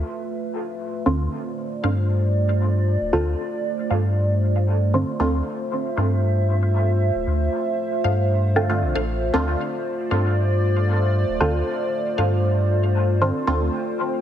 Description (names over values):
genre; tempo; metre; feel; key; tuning
dub techno; 116 BPM; 4/4; straight; D minor; A4 = 445 Hz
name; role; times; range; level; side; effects
dark analog pad; sustained chords; 0.0-14.2 s; A3 to G5; -25 LUFS; right 1 dB; chorus, phaser
warm sub bass; bass; 0.0-13.7 s; D1 to G2; -20 LUFS; equal; none
filtered dub chord stab; stabs; 1.1-13.7 s; D3 to F4; -25 LUFS; right 1 dB; chorus, phaser, dub echo
filtered dub chord stab; riff; 1.8-12.4 s; D4 to F5; -32 LUFS; equal; phaser, dub echo
room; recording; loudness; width
light reverb, digital ambience; heavily compressed radio sound; -19 LUFS; side -10 dB against mid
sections
0.0-1.1 A section; 1.1-14.2 B section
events
filter sweep on analog synth pad 0.0-1.1; break 0.0-1.1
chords
0.0 Dm (rootless); 1.1 Dm7